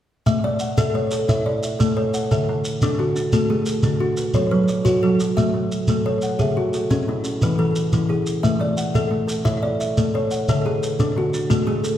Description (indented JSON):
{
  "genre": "southern african traditional, mbira-style interlocking cycle",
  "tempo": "118 BPM (dotted quarters)",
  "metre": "12/8",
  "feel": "straight",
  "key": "A major",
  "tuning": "A4 = 439 Hz",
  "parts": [
    { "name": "kalimba", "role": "arpeggios", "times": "0.3-12.0 s", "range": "C#3 to E5", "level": "-22 LUFS", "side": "left 3 dB", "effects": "slapback echo" },
    { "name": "shekere", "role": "percussion", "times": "0.3-12.0 s", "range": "none", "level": "-23 LUFS", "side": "right 1 dB", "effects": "none" },
    { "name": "kalimba", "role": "arpeggios", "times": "0.4-12.0 s", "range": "C#3 to F#5", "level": "-24 LUFS", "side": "right 4 dB", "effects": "none" }
  ],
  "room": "wet recital hall reverb, RT60 1.4 s",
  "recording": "heard from further back in the room",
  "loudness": "-18 LUFS",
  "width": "side -11 dB against mid",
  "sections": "0.3-12.0 A section",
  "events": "none",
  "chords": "0.3 A; 2.3 D; 4.3 F#m; 5.4 A; 6.4 C#m; 7.4 E; 8.4 A; 10.5 D"
}